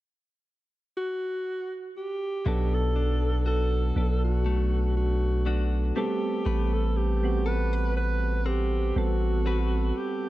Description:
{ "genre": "R&B", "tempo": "60 BPM", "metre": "4/4", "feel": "swing 54% on 16ths", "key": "unclear", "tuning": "A4 = 440 Hz", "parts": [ { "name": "mellow alto saxophone", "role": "melody", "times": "1.0-10.3 s", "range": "F#4 to B4", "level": "-31 LUFS", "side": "right 1 dB", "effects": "none" }, { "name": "soft electric-piano-like synth keys", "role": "accompaniment", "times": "2.5-10.3 s", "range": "F#3 to A4", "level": "-32 LUFS", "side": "right 3 dB", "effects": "chorus, tremolo" }, { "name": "direct-recorded clean electric guitar", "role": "arpeggios", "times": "2.5-10.3 s", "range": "B2 to B4", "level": "-35 LUFS", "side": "left 5 dB", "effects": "none" }, { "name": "long sustained 808-style bass", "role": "bass", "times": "2.5-9.9 s", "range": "A1 to B1", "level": "-25 LUFS", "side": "equal", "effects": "none" } ], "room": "digital ambience", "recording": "dark, warm production", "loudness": "-24 LUFS", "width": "side -16 dB against mid", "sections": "0.0-2.5 A section; 2.5-10.3 B section", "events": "none", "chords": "0.0 N.C.; 2.5 Bm7; 6.0 Am9" }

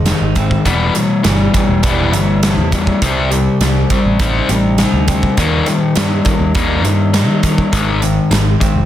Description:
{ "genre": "quiet-loud alternative rock", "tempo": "102 BPM", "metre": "4/4", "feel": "straight", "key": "unclear", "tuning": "A4 = 441 Hz", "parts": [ { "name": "picked steel-string acoustic guitar", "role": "arpeggios", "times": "0.0-8.9 s", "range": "E2 to E4", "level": "-22 LUFS", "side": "right 9 dB", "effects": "none" }, { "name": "fuzz guitar", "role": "riff", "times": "0.0-8.9 s", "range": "Ab2 to C4", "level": "-15 LUFS", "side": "left 4 dB", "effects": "distortion" }, { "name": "picked electric bass", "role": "bass", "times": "0.0-8.9 s", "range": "E1 to Eb3", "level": "-16 LUFS", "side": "right 1 dB", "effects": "none" }, { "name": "big rock drum kit", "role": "drums", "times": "0.1-8.7 s", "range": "hi-hat, kick drum, snare drum", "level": "-18 LUFS", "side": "right 1 dB", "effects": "none" } ], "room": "light reverb", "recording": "dense, heavily limited modern master", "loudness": "-11 LUFS", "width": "side -12 dB against mid", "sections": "0.0-8.9 A section", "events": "none", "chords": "0.0 Ab; 0.7 Em; 3.0 Cm; 5.4 Eb; 7.7 Ab" }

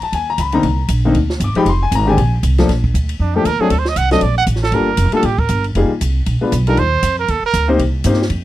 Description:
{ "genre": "jazz, small-group swing and bop", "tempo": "235 BPM", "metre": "4/4", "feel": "swing 58% on 8ths", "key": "Bb major", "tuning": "A4 = 442 Hz", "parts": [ { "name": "warm baby grand piano", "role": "accompaniment", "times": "0.0-8.2 s", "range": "D3 to D6", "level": "-17 LUFS", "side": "left 3 dB", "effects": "none" }, { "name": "upright bass", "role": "bass", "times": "0.0-8.4 s", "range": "F1 to G2", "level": "-16 LUFS", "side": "right 1 dB", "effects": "none" }, { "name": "compact cocktail drum kit", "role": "drums", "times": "0.0-8.4 s", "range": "hi-hat, kick drum, ride cymbal, snare drum", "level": "-25 LUFS", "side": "equal", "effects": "none" }, { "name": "clear trumpet", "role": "second line", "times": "3.2-7.7 s", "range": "D4 to F#5", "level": "-18 LUFS", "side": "right 6 dB", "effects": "none" } ], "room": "little or no reverb", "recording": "dry, close 1970s-style studio recording", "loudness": "-13 LUFS", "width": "side -14 dB against mid", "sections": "0.0-2.7 A section; 2.7-8.4 A section", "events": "trumpet solo 2.7-8.4", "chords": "0.0 Dbsus2; 0.6 Cm9; 1.7 Fmadd9; 2.2 Bbadd9; 2.7 Bbmaj7; 3.7 D7(no3); 4.7 Gm9; 5.8 Fm11; 6.3 Bb7b9; 6.8 Ebmaj7sus2; 7.8 Cm7" }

